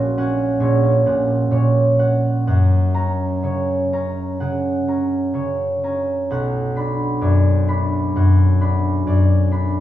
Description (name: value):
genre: classical, solo harp piece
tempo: 61-71 BPM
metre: 4/4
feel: rubato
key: unclear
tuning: A4 = 440 Hz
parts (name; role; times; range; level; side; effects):
- concert harp; solo; 0.0-9.8 s; A#1 to B5; -16 LUFS; equal; none
room: wet recital hall reverb, RT60 1.2 s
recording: heard from further back in the room, small room ambience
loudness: -16 LUFS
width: side -13 dB against mid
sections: 0.0-9.8 A section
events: none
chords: 0.0 F#/A#; 2.5 F#; 6.3 Bm